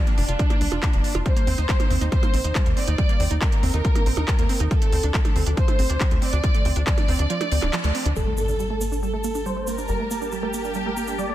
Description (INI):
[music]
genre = uplifting trance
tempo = 139 BPM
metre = 4/4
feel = straight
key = G minor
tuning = A4 = 440 Hz
[part]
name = dark studio violin section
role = second line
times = 0.0-11.3 s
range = D4 to D5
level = -29 LUFS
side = equal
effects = tape echo
[part]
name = wide unison pluck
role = arpeggios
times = 0.0-11.3 s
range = F3 to F4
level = -30 LUFS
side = right 5 dB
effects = sidechain pumping, tape echo
[part]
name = techno drum kit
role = drums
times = 0.1-8.1 s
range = handclaps, hi-hat, percussion blips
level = -29 LUFS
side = right 2 dB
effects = sidechain pumping on hats, low-pass filter on hats, low-pass filter on snare, sidechain pumping on perc, low-pass filter on perc, low-pass filter on room
[part]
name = tight sequencer bass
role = bass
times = 0.2-11.3 s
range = D1 to Eb2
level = -25 LUFS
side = equal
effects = sidechain pumping
[part]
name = electronic kick drum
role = drums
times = 0.4-7.0 s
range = none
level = -21 LUFS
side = equal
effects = none
[part]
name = big supersaw lead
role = melody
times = 8.2-11.3 s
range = A4 to D5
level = -30 LUFS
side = equal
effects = cassette tape, sidechain pumping, low-pass filter, tape echo
[part]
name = shimmering ambient pad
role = sustained chords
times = 9.0-11.3 s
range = G3 to A5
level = -34 LUFS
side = equal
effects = chorus, built-in reverb, phaser, sidechain pumping
[part]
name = egg shaker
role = percussion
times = 8.2-11.3 s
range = none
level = -37 LUFS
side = right 2 dB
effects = none
[part]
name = impact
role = sound effects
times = 8.2-9.9 s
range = none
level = -28 LUFS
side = equal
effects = none
[sound]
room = little or no reverb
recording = dense, heavily limited modern master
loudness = -20 LUFS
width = side -13 dB against mid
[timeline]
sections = 0.0-8.2 A section; 8.2-11.3 B section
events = kick drops out 7.3-8.2; band accent 7.7; impact 8.2-9.9; filter sweep on supersaw synth 8.2-11.3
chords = 0.0 Bb/F; 1.3 Eb6; 4.7 Dm7; 8.2 Gmadd9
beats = 0.39 0.83 | 1.26 1.69 2.12 2.55 | 2.98 3.42 3.85 4.28 | 4.71 5.14 5.57 6.01 | 6.44 6.87 7.30 7.73 | 8.16 8.60 9.03 9.46 | 9.89 10.32 10.75 11.19